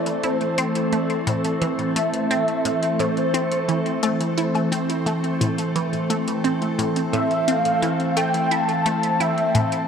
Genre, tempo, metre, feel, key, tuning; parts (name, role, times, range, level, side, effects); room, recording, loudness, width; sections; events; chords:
ambient, sequencer-driven space music; 87 BPM; 4/4; straight; A minor; A4 = 441 Hz
expressive synth lead; melody; 0.0-9.7 s; C5 to A5; -24 LUFS; equal; ensemble chorus, shimmer reverb, analog delay
evolving wavetable pad; sustained chords; 0.0-9.9 s; E3 to A4; -23 LUFS; equal; phaser, built-in reverb, shimmer reverb
resonant blip pluck; riff; 0.0-9.7 s; A2 to E4; -26 LUFS; equal; phaser, shimmer reverb, analog delay
bubbling stepped-filter texture; texture; 0.0-9.9 s; C4 to C5; -33 LUFS; left 1 dB; chorus, built-in reverb, shimmer reverb
electronic hi-hat and woodblock; percussion; 0.1-9.9 s; -31 LUFS; left 2 dB; analog delay
wet plate reverb, RT60 2.5 s; echo-heavy mix; -19 LUFS; side -7 dB against mid
0.0-9.9 A section
0.0 Am